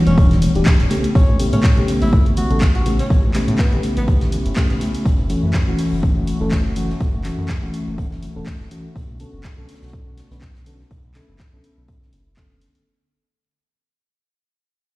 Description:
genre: deep house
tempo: 123 BPM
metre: 4/4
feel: swing 55% on 16ths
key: B minor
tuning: A4 = 440 Hz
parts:
  - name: warm analog pad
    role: sustained chords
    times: 0.0-12.8 s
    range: D3 to G4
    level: -30 LUFS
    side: left 1 dB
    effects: chorus, sidechain pumping
  - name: mellow FM electric piano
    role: stabs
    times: 0.0-12.8 s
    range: C#3 to B4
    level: -22 LUFS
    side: left 1 dB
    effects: chorus, low-pass filter, tape echo
  - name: breathy tenor saxophone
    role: melody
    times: 0.1-4.2 s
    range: B3 to F#4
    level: -30 LUFS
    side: left 1 dB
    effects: dub echo
  - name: round analog bass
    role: bass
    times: 0.1-12.7 s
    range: D1 to A2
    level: -22 LUFS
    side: equal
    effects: sidechain pumping
  - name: punchy analog drum machine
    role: drums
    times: 0.1-12.8 s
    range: handclaps, hi-hat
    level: -30 LUFS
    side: equal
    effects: none
  - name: congas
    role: percussion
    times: 0.1-4.9 s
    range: none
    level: -27 LUFS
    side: equal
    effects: none
  - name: electronic kick drum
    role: drums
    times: 0.2-12.5 s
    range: none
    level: -17 LUFS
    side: equal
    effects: overdrive
  - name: oversized low-tuned drum kit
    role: drums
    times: 0.2-12.7 s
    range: hi-hat, snare drum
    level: -40 LUFS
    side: left 2 dB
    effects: none
room: light reverb, small room reverb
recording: played on a big sound system in a bare room, stone room reverb, vinyl crackle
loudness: -15 LUFS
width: side -19 dB against mid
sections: 0.0-12.9 A section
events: fade-out 0.0-12.9; filter sweep on FM electric piano 0.0-12.9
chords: 0.0 Em9; 0.9 A9; 5.1 F#m7; 9.0 Bm9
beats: 0.18 0.66 | 1.15 1.64 2.13 2.62 | 3.10 3.59 4.08 4.57 | 5.05 5.54 6.03 6.52 | 7.00 7.49 7.98 8.47 | 8.96 9.44 9.93 10.42 | 10.91 11.39 11.88 12.37

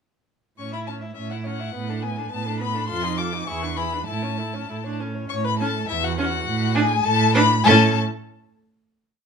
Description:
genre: quick classical-period movement for string quartet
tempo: 97-106 BPM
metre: 2/4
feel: rubato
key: A major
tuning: A4 = 441 Hz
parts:
  - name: rich violin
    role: melody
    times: 0.6-8.0 s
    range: E5 to D6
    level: -25 LUFS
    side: left 8 dB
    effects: none
  - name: warm violin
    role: second line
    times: 0.6-8.0 s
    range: E4 to E5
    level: -27 LUFS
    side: left 5 dB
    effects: none
  - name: clear viola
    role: accompaniment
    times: 0.6-8.0 s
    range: B3 to F4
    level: -28 LUFS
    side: right 2 dB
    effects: none
  - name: warm cello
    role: bass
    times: 0.6-8.0 s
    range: E2 to A2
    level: -24 LUFS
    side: right 4 dB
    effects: none
room: moderate large studio reverb, RT60 0.9 s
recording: minimal, uncompressed stereo recording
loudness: -20 LUFS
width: side -6 dB against mid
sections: 0.6-5.3 A section; 5.3-7.7 coda; 7.7-8.8 final chord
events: none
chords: 0.6 A; 1.7 Bm7/A; 2.9 F7; 3.5 E7; 4.1 A; 6.5 Bm7/A; 7.7 A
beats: | 0.58 1.17 | 1.74 2.32 | 2.89 3.48 | 4.08 4.69 | 5.30 5.89 | 6.46 7.04 | 7.65

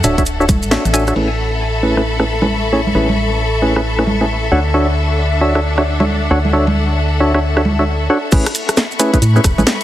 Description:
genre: UK garage, two-step garage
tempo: 134 BPM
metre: 4/4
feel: swing 63% on 16ths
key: A major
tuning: A4 = 440 Hz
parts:
  - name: percussive organ stab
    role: stabs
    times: 0.0-9.6 s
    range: A3 to F#5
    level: -17 LUFS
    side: equal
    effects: chorus, ping-pong delay
  - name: organ-like FM bass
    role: bass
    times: 0.0-9.6 s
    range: D1 to A2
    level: -17 LUFS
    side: equal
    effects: tube saturation
  - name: garage drum kit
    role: drums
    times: 0.0-9.8 s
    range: congas, crash cymbal, hi-hat, rim click, snare drum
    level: -18 LUFS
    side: right 1 dB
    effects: low-pass filter on hats, low-pass filter on snare, low-pass filter on perc, low-pass filter on cymbals
  - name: maracas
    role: percussion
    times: 0.0-1.1, 8.3-9.8 s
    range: none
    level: -25 LUFS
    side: right 4 dB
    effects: none
  - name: clear studio string section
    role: texture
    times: 0.0-9.8 s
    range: D4 to C#6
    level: -21 LUFS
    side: left 2 dB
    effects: sidechain pumping
  - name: electronic kick drum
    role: drums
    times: 0.2-0.6, 8.3-9.6 s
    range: none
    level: -14 LUFS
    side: equal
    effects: none
  - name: string-like resonator pluck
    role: melody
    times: 0.7-1.1 s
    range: E5 to G#5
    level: -30 LUFS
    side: left 2 dB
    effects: none
room: moderate plate reverb, RT60 1.3 s, digital ambience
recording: heavily compressed radio sound, multiband compression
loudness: -12 LUFS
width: side -13 dB against mid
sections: 0.0-1.2 A section; 1.2-8.3 B section; 8.3-9.8 C section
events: band accent 0.7; filter sweep on synth stab 1.2-8.3; drop 8.3-9.8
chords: 0.0 Dmaj9; 1.2 Amaj9; 4.5 Dmaj9; 8.3 Amaj9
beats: 0.26 0.71 | 1.16 1.61 2.05 2.50 | 2.95 3.40 3.85 4.29 | 4.74 5.19 5.64 6.08 | 6.53 6.98 7.43 7.88 | 8.32 8.77 9.22 9.67

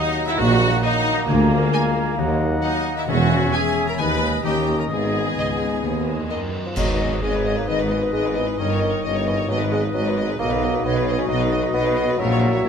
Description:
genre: cinematic, playful, whimsical film cue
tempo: 133 BPM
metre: 4/4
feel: straight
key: G# minor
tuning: A4 = 440 Hz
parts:
  - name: clear oboe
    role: second line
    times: 0.0-12.7 s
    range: D#5 to G#5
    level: -33 LUFS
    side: equal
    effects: none
  - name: mellow clarinet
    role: second line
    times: 0.0-12.7 s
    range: F#4 to E#5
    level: -33 LUFS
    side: left 2 dB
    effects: none
  - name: mellow hollow silver concert flute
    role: second line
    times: 0.0-12.7 s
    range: A#4 to A#5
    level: -31 LUFS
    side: left 2 dB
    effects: none
  - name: warm chamber violin section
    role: second line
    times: 0.0-12.7 s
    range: D#4 to B5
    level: -34 LUFS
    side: left 2 dB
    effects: none
  - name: mellow bassoon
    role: accompaniment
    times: 0.0-12.7 s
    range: D#3 to D#4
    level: -27 LUFS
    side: right 3 dB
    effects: none
  - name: warm studio viola section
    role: accompaniment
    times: 0.0-12.7 s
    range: A#3 to B4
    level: -26 LUFS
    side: equal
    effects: none
  - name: mellow French horn section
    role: sustained chords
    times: 0.0-12.7 s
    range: F#3 to B4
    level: -29 LUFS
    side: left 7 dB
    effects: none
  - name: concert harp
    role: arpeggios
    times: 0.0-12.7 s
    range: G2 to C#6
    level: -30 LUFS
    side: left 12 dB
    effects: none
  - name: clear tuba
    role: bass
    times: 0.4-12.7 s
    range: E1 to D#2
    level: -28 LUFS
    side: right 5 dB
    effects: none
  - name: warm chamber double bass section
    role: bass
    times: 0.4-12.7 s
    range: E1 to D#2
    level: -27 LUFS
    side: right 4 dB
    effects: none
  - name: warm studio cello section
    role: bass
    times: 0.4-12.7 s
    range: C#2 to B2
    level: -26 LUFS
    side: right 1 dB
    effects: none
  - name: warm studio violin section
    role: melody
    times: 0.8-12.7 s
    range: A#4 to G#5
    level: -28 LUFS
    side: left 4 dB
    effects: none
  - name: cymbal swell, clash cymbals and concert bass drum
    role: percussion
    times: 3.1-7.6 s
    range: none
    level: -30 LUFS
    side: equal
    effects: none
room: light reverb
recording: close, detailed microphones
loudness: -18 LUFS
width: side -7 dB against mid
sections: 0.0-6.8 A section; 6.8-12.7 A section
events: band accent 6.8-7.2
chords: 0.0 D#m; 1.3 A#7/D; 2.2 D#m; 3.1 C#m/E; 4.0 G#m/D#; 4.5 D#7; 4.9 G#m; 8.6 D#7/G; 9.5 G#m; 10.4 B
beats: 0.39 0.83 | 1.28 1.73 2.19 2.64 | 3.09 3.54 3.99 4.45 | 4.92 5.38 5.84 6.30 | 6.77 7.22 7.68 8.13 | 8.58 9.04 9.49 9.94 | 10.39 10.84 11.29 11.74 | 12.19 12.64

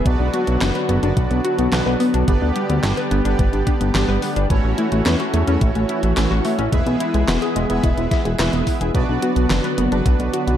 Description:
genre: synthwave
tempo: 108 BPM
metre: 4/4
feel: straight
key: B minor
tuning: A4 = 442 Hz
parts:
  - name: brassy analog pad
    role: sustained chords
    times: 0.0-10.6 s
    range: D3 to G#4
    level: -25 LUFS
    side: right 1 dB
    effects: chorus, sidechain pumping
  - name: mellow electric guitar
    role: riff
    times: 0.0-10.5 s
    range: G3 to E5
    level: -27 LUFS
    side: left 3 dB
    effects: wide subtle chorus, tape echo
  - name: analog synth brass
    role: stabs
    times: 0.0-10.6 s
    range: B3 to E5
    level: -26 LUFS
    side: right 3 dB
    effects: chorus, vintage 12-bit sampler grit, tape echo
  - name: analog pluck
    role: arpeggios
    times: 0.1-10.6 s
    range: G#3 to B4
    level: -24 LUFS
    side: left 3 dB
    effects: chorus, tape echo
  - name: chorused synth bass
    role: bass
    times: 0.1-10.6 s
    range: E1 to E2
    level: -20 LUFS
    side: equal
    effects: none
  - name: electronic kick drum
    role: drums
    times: 0.1-10.2 s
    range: none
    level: -20 LUFS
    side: equal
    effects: overdrive
  - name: pop drum kit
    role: drums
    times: 0.1-10.6 s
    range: handclaps, hi-hat, snare drum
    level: -25 LUFS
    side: equal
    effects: overdrive
room: light reverb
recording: dark, warm production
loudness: -16 LUFS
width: side -10 dB against mid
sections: 0.0-10.6 A section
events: none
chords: 0.1 Bm; 2.3 G; 4.5 A6; 6.7 E; 8.9 Bm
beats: | 0.06 0.61 1.17 1.72 | 2.28 2.83 3.39 3.95 | 4.50 5.06 5.61 6.17 | 6.72 7.28 7.83 8.39 | 8.95 9.50 10.06

